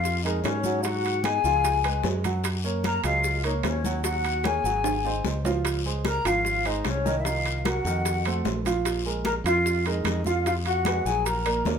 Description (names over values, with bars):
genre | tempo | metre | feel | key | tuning
Afro-Cuban jazz | 150 BPM | 4/4 | straight | Bb minor | A4 = 440 Hz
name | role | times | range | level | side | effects
breathy mellow jazz flute | melody | 0.0-11.7 s | Db5 to Bb5 | -27 LUFS | left 3 dB | none
mellow flugelhorn | second line | 0.0-11.7 s | Db4 to Bb4 | -32 LUFS | left 4 dB | none
warm baby grand piano | accompaniment | 0.0-11.8 s | Eb3 to Gb5 | -30 LUFS | right 4 dB | none
modern bright fingered electric bass | bass | 0.0-11.8 s | Ab1 to Ab2 | -29 LUFS | equal | none
congas | percussion | 0.0-11.8 s | none | -34 LUFS | left 2 dB | none
guiro | percussion | 0.0-11.8 s | none | -40 LUFS | left 7 dB | none
bongos | percussion | 0.1-11.8 s | none | -36 LUFS | left 6 dB | none
maracas | percussion | 0.1-11.8 s | none | -39 LUFS | right 7 dB | none
timbales | percussion | 0.3-11.8 s | none | -34 LUFS | right 8 dB | none
room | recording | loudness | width
moderate studio reverb, RT60 0.8 s | minimal, uncompressed stereo recording | -23 LUFS | side -7 dB against mid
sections
0.0-11.8 A section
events
drum fill 4.8-5.7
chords
0.0 Bbm7; 0.8 Abm7; 1.6 Db7; 2.4 Gb69; 4.0 Ebm7; 4.8 Ab7; 5.7 Dbmaj7; 7.3 Cm7b5; 8.1 F7b9; 8.9 Bb7sus4; 10.5 Fdim; 11.3 Bbaug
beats
0.04 0.44 | 0.84 1.24 1.64 2.04 | 2.44 2.85 3.25 3.65 | 4.05 4.45 4.85 5.25 | 5.65 6.05 6.45 6.85 | 7.25 7.65 8.05 8.46 | 8.86 9.26 9.66 10.06 | 10.46 10.86 11.26 11.66